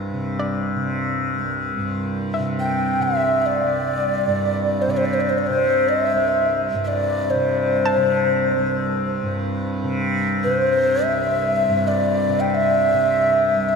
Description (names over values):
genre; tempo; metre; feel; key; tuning
world meditative, free-time meditation music; free time; none; none; C major pentatonic; A4 = 441 Hz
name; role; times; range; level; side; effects
tanpura; drone; 0.0-13.8 s; C2 to C3; -22 LUFS; equal; none
hollow square pluck; texture; 0.4-13.8 s; D5 to A5; -32 LUFS; equal; chorus
breathy mellow Native American-style cedar flute; melody; 2.6-13.8 s; C5 to G5; -19 LUFS; equal; diffuse ambient delay
room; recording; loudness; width
wet cathedral reverb, RT60 4.9 s; in a vast, echoing space; -18 LUFS; side -5 dB against mid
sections
0.0-1.8 A section; 1.8-13.8 A section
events
none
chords
none